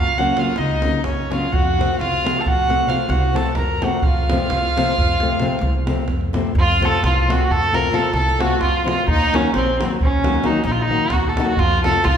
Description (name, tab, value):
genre	balkan folk, Balkan wedding band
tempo	262 BPM (eighths)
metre	11/8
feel	straight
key	F phrygian dominant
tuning	A4 = 440 Hz
part	dark violin	melody	0.0-12.2 s	C4 to Bb5	-20 LUFS	right 3 dB	none
part	clear trumpet	second line	0.0-12.2 s	C4 to Bb4	-26 LUFS	left 3 dB	none
part	upright bass	bass	0.0-12.2 s	Bb1 to Gb2	-22 LUFS	equal	none
part	nylon-string guitar	accompaniment	0.2-12.0 s	C3 to Gb4	-23 LUFS	left 4 dB	none
part	davul	percussion	0.2-12.2 s	none	-23 LUFS	right 1 dB	none
room	wet recital hall reverb, RT60 1.8 s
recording	recorded in a church or concert hall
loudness	-16 LUFS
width	side -8 dB against mid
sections	0.0-6.6 A section; 6.6-12.2 B section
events	none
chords	0.0 Gb; 1.5 F; 9.1 Ebm; 11.6 F